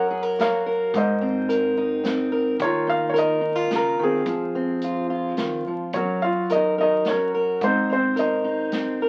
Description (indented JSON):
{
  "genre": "acoustic folk-pop ballad",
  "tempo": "108 BPM",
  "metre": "3/4",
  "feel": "straight",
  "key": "Ab major",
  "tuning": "A4 = 439 Hz",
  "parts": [
    { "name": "felt-muted upright piano", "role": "melody", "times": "0.0-9.0 s", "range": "C4 to Gb5", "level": "-26 LUFS", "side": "equal", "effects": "none" },
    { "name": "fingerpicked steel-string acoustic guitar", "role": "accompaniment", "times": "0.0-9.1 s", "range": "Ab2 to Bb4", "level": "-26 LUFS", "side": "equal", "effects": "none" },
    { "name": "upright bass", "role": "bass", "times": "0.0-9.1 s", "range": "Eb2 to Ab2", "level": "-45 LUFS", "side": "equal", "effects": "none" },
    { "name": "natural country drum kit", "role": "drums", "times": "0.4-8.8 s", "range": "hi-hat, kick drum, snare drum", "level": "-35 LUFS", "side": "equal", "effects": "none" }
  ],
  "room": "moderate studio reverb, RT60 0.7 s",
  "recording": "very old 78 rpm record, vinyl crackle",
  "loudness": "-23 LUFS",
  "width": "mono",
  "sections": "0.0-5.9 A section; 5.9-9.1 A section",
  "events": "none",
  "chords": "0.0 Gb; 0.9 Abadd9; 2.6 Ebsus2; 4.2 Fm; 5.9 Gb; 7.6 Abadd9"
}